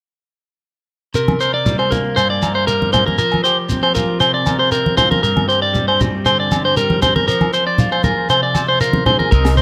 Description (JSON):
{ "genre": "highlife guitar band", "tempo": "118 BPM", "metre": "4/4", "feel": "straight", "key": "unclear", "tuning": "A4 = 441 Hz", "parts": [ { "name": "electric guitar at the edge of break-up", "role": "accompaniment", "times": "1.1-9.6 s", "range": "G2 to Eb5", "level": "-24 LUFS", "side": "equal", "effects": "phaser" }, { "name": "shekere", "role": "percussion", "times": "1.1-9.6 s", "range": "none", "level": "-26 LUFS", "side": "equal", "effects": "none" }, { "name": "electric guitar at the edge of break-up", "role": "arpeggios", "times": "1.2-9.6 s", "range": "Bb4 to D5", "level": "-18 LUFS", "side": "equal", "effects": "analog delay, plate reverb" }, { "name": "agogo bells", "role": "percussion", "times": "1.3-9.6 s", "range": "none", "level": "-29 LUFS", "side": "equal", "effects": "none" }, { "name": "congas", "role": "percussion", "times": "1.3-9.3 s", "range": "none", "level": "-22 LUFS", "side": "equal", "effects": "none" }, { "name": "vintage muted fingered electric bass", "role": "bass", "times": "9.3-9.6 s", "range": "C2 to Eb2", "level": "-16 LUFS", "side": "equal", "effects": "none" }, { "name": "tight funk drum kit", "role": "drums", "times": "9.3-9.6 s", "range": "kick drum, snare drum", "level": "-18 LUFS", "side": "equal", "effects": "none" } ], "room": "moderate studio reverb, RT60 0.7 s", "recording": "none", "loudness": "-16 LUFS", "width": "mono", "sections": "1.1-9.3 A section", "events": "none", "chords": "1.1 C5; 3.2 Fsus2; 5.2 Gsus4; 7.3 Fmadd9" }